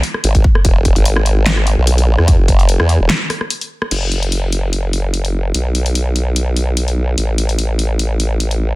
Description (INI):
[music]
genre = heavy wobble dubstep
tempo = 147 BPM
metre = 4/4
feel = swing 54% on 16ths, half-time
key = unclear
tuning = A4 = 440 Hz
[part]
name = big-room dance drum kit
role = drums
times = 0.0-8.6 s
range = crash cymbal, handclaps, hi-hat, rim click, snare drum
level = -20 LUFS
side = left 1 dB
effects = studio reverb
[part]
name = formant-sweep wobble bass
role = bass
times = 0.2-8.8 s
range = E1 to E2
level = -14 LUFS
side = equal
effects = chorus, overdrive
[part]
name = electronic kick drum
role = drums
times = 0.3-2.6 s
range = none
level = -11 LUFS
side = equal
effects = studio reverb
[sound]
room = digital ambience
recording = dense, heavily limited modern master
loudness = -13 LUFS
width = side -21 dB against mid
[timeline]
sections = 0.0-3.9 A section; 3.9-8.8 B section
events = drop 0.0-3.9; break 3.1-3.9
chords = none